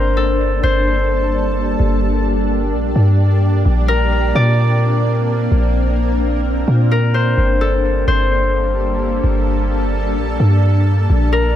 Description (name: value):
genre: hip hop, atmospheric cloud-rap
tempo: 129 BPM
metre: 4/4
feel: half-time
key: G minor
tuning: A4 = 440 Hz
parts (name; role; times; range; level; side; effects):
- Celtic harp; melody; 0.0-11.6 s; A4 to D5; -20 LUFS; left 2 dB; dub echo
- shimmering ambient pad; sustained chords; 0.0-11.6 s; G3 to A4; -20 LUFS; equal; chorus, built-in reverb
- warm 808-style bass; bass; 0.0-11.6 s; G1 to Bb2; -15 LUFS; equal; none
room: little or no reverb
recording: echo-heavy mix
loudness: -13 LUFS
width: side -11 dB against mid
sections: 0.0-11.6 A section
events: none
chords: 0.0 Gmadd9; 3.7 Bbadd9; 7.4 Gmadd9